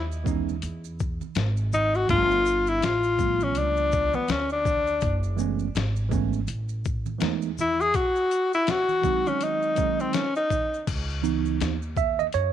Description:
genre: hip hop, jazz-hop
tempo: 82 BPM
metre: 4/4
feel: swing 59% on 16ths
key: C# minor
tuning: A4 = 441 Hz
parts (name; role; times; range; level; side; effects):
- breathy tenor saxophone; melody; 0.0-10.8 s; B3 to G#4; -23 LUFS; left 2 dB; slapback echo
- upright bass; bass; 0.0-12.5 s; F#1 to F#2; -29 LUFS; right 1 dB; none
- maracas and congas; percussion; 0.1-12.5 s; none; -41 LUFS; right 10 dB; none
- mellow tine electric piano; accompaniment; 0.2-12.5 s; D#3 to E5; -28 LUFS; right 15 dB; medium stereo tremolo
- boom bap sampler-style drum kit; drums; 0.3-12.5 s; crash cymbal, hi-hat, kick drum, shaker, snare drum; -30 LUFS; left 3 dB; none
room: small room ambience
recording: 1960s-style stereo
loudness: -22 LUFS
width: side -10 dB against mid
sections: 0.0-10.9 A section; 10.9-12.5 A section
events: tenor saxophone solo 0.0-10.9; tine electric piano solo 10.9-12.5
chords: 0.0 C#m9; 2.1 G9; 5.0 F#m11; 8.0 G#7; 10.9 C#m9

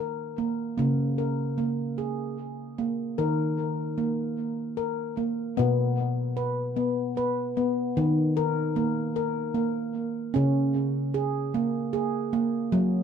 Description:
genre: world meditative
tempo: 75 BPM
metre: 3/4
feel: swing 53% on 16ths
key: unclear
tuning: A4 = 437 Hz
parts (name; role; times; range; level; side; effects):
- handpan; solo; 0.0-13.0 s; Cb3 to Cb5; -25 LUFS; equal; diffuse ambient delay
room: wet studio reverb, RT60 0.5 s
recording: none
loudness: -25 LUFS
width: side -7 dB against mid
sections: 0.0-5.6 A section; 5.6-13.0 B section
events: none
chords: 0.0 N.C.; 0.8 Db5; 3.2 Eb5; 5.6 N.C.; 8.0 Eb5; 10.3 Db5

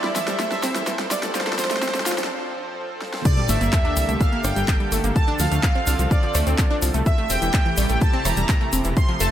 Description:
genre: progressive house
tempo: 126 BPM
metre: 4/4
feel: straight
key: G dorian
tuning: A4 = 442 Hz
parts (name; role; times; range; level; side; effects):
- soft supersaw; melody; 0.0-9.3 s; C5 to C6; -26 LUFS; right 1 dB; dub echo
- supersaw pad; sustained chords; 0.0-9.3 s; E2 to C5; -30 LUFS; right 1 dB; sidechain pumping
- wide unison pluck; arpeggios; 0.0-9.3 s; E3 to A4; -28 LUFS; right 1 dB; sidechain pumping, dub echo
- big-room dance drum kit; drums; 0.0-9.3 s; crash cymbal, handclaps, hi-hat, rim click, snare drum; -28 LUFS; equal; overdrive, sidechain pumping on hats, sidechain pumping on cymbals
- riser and sub drop; sound effects; 0.0-5.2 s; none; -31 LUFS; equal; none
- egg shaker; percussion; 0.2-9.3 s; none; -32 LUFS; left 5 dB; none
- electronic kick drum; drums; 3.3-9.1 s; none; -19 LUFS; equal; overdrive
- dark detuned saw bass; bass; 3.5-9.3 s; E1 to D2; -22 LUFS; equal; sidechain pumping
room: light reverb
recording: high-pass filter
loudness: -19 LUFS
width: side -11 dB against mid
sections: 0.0-3.3 A section; 3.3-9.3 B section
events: build-up 0.0-3.3; drum fill 0.0-2.3, 3.0; break 2.3-3.3; drop 3.3-9.3; impact 3.3-5.2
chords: 0.0 Am7/E; 1.3 F; 3.3 Gmadd9; 5.2 Dm7; 7.1 Am7/E

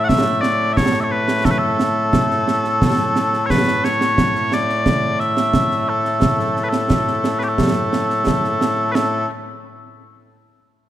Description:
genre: scottish traditional, Scottish pipe music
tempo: 88 BPM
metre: 4/4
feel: straight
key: A major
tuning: A4 = 440 Hz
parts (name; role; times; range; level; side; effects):
- mellow small bagpipes; melody; 0.0-9.3 s; A2 to F#5; -18 LUFS; left 1 dB; none
- concert snare drum and concert bass drum; drums; 0.1-9.1 s; none; -20 LUFS; right 2 dB; none
room: moderate concert hall reverb, RT60 2.5 s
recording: none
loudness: -15 LUFS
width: side -12 dB against mid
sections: 0.0-9.0 A section; 9.0-10.9 B section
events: none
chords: none

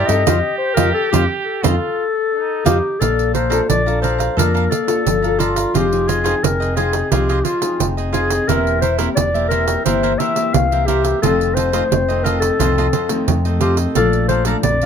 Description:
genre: samba and choro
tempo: 88 BPM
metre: 4/4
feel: straight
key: Bb major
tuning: A4 = 440 Hz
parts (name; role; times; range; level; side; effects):
- breathy clarinet; melody; 0.0-14.9 s; F4 to F5; -19 LUFS; left 4 dB; plate reverb
- clear trumpet; second line; 0.0-3.0 s; Eb4 to G4; -23 LUFS; right 6 dB; none
- cavaquinho; accompaniment; 0.0-14.9 s; E4 to Bb5; -24 LUFS; right 6 dB; none
- nylon-string guitar; accompaniment; 0.0-14.9 s; F2 to A4; -22 LUFS; left 4 dB; none
- hollow-body short-scale fingered electric bass; bass; 0.0-14.9 s; E1 to G2; -20 LUFS; equal; none
- pandeiro; percussion; 0.1-14.9 s; none; -21 LUFS; right 9 dB; none
room: moderate small room reverb, RT60 0.6 s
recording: none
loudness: -14 LUFS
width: side -7 dB against mid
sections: 0.0-3.0 A section; 3.0-14.9 B section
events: band accent 0.3-3.0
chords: 0.3 F7; 3.0 Bbmaj7; 5.7 Fm7; 8.5 C7/E; 11.2 F7; 14.0 Bbmaj7

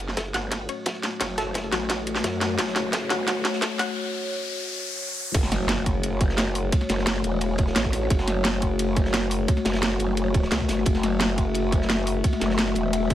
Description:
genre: dark technical drum and bass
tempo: 174 BPM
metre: 4/4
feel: straight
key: F# phrygian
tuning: A4 = 438 Hz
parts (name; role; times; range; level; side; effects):
- dark analog pad; sustained chords; 0.3-13.1 s; A3 to E5; -28 LUFS; left 3 dB; chorus, sidechain pumping
- growl bass; bass; 0.0-13.1 s; E1 to F#2; -28 LUFS; right 1 dB; chorus
- crunchy breakbeat drum kit; drums; 0.0-13.1 s; ride cymbal, snare drum; -36 LUFS; right 1 dB; high-pass filter on cymbals, high-pass filter on snare, high-pass filter on room
- drum and bass drum kit; drums; 0.0-13.1 s; crash cymbal, hi-hat, snare drum; -26 LUFS; right 1 dB; overdrive, high-pass filter on hats, high-pass filter on snare, high-pass filter on cymbals
- riser and impact; sound effects; 1.6-6.7 s; none; -34 LUFS; left 1 dB; none
- analog pluck; arpeggios; 0.2-3.9 s; F#4 to F#5; -32 LUFS; left 2 dB; chorus, sidechain pumping, tape echo
- electronic kick drum; drums; 0.2-13.1 s; none; -24 LUFS; right 1 dB; overdrive, high-pass filter on kick
room: light reverb, digital ambience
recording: high-pass filter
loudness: -22 LUFS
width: side -12 dB against mid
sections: 0.0-5.3 A section; 5.3-13.1 B section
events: build-up 0.0-5.3; drum fill 0.0-4.0; filter sweep 0.0-5.3; riser 1.6-5.3; break 4.0-5.3; drop 5.3-13.1; impact 5.3-6.7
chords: 0.0 F#m

